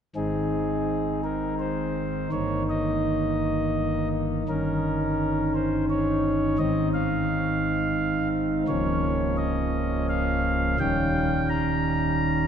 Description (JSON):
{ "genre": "classical, chorale-style piece for pipe organ", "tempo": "85 BPM", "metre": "3/4", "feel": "rubato", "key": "Ab major", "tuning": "A4 = 441 Hz", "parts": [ { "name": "chamber organ, principal", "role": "solo", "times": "0.2-12.5 s", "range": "Db1 to Bb5", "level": "-23 LUFS", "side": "equal", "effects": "none" } ], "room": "wet cathedral reverb, RT60 4.5 s", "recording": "none", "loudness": "-23 LUFS", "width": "side -8 dB against mid", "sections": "0.2-12.5 A section", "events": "none", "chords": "0.2 Ab; 2.3 Eb/G; 4.5 Eb7/G; 6.6 Ab; 8.7 Bbm/Db; 10.8 Eb7", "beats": "| 0.17 0.89 1.60 | 2.32 3.05 3.77 | 4.47 5.19 5.90 | 6.60 7.29 7.98 | 8.68 9.39 10.09 | 10.80 11.51 12.22" }